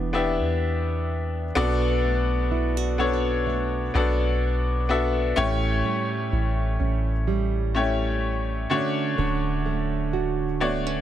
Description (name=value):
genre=contemporary R&B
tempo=63 BPM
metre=4/4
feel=swing 54% on 16ths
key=unclear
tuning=A4 = 439 Hz
part: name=bright baby grand piano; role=accompaniment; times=0.0-11.0 s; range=A3 to E5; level=-25 LUFS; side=left 3 dB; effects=none
part: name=nylon-string guitar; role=arpeggios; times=0.0-11.0 s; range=A2 to G4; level=-29 LUFS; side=right 7 dB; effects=none
part: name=soft 808-style bass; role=bass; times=0.0-11.0 s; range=D1 to E2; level=-26 LUFS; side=equal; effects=none
room=light reverb, studio ambience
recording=none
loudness=-22 LUFS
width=side -11 dB against mid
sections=0.0-11.0 A section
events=grand piano fill 10.1-11.0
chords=0.0 Em7; 1.6 Bm7; 5.4 A7; 8.7 Dmaj7